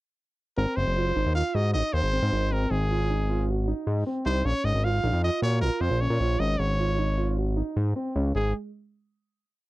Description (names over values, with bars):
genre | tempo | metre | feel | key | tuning
progressive instrumental, band music in an uneven meter | 154 BPM | 5/4 | straight | Ab mixolydian | A4 = 440 Hz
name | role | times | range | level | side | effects
brilliant trumpet | melody | 0.6-8.5 s | Ab4 to F5 | -29 LUFS | equal | none
dark grand piano | arpeggios | 0.6-8.5 s | Ab3 to Gb4 | -31 LUFS | right 3 dB | slapback echo
fat analog bass | bass | 0.6-8.5 s | Gb1 to Bb2 | -25 LUFS | equal | none
room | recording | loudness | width
little or no reverb | dry, close 1970s-style studio recording | -24 LUFS | side -18 dB against mid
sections
0.6-8.4 A section; 8.4-9.7 final note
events
none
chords
0.6 Ab7; 4.5 Bbm7; 6.4 Absus4; 8.4 N.C.